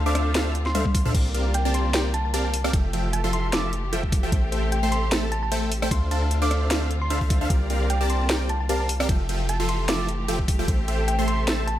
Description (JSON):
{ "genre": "future bass", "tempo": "151 BPM", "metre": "4/4", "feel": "swing 54% on 16ths, half-time", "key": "F major", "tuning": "A4 = 440 Hz", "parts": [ { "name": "dark symphonic string section", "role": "sustained chords", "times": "0.0-11.8 s", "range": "C3 to G4", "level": "-36 LUFS", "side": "equal", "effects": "sidechain pumping" }, { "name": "supersaw stab", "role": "riff", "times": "0.0-11.7 s", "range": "F3 to C6", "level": "-27 LUFS", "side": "equal", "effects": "sidechain pumping" }, { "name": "long sustained 808-style bass", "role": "bass", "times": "0.0-11.8 s", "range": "F1 to D2", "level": "-25 LUFS", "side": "equal", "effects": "sidechain pumping" }, { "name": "thumb-piano-like synth pluck", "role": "melody", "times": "0.1-11.7 s", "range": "G5 to D6", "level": "-31 LUFS", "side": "equal", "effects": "chorus, sidechain pumping, tape echo" }, { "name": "trap drum kit", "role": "drums", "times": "0.2-11.8 s", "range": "crash cymbal, hi-hat, rim click, snare drum, toms", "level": "-27 LUFS", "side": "equal", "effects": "overdrive" }, { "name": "electronic kick drum", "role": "drums", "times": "0.9-10.8 s", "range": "none", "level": "-22 LUFS", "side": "equal", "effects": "overdrive" } ], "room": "light reverb, digital ambience", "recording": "none", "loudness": "-21 LUFS", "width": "side -12 dB against mid", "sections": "0.0-11.8 A section", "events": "drum fill 0.7-1.1", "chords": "0.0 Dm7; 1.1 C9sus4; 2.7 Fmaj9; 4.3 Am7; 5.9 Dm7; 7.5 C9sus4; 9.1 Fmaj9; 10.7 Am7" }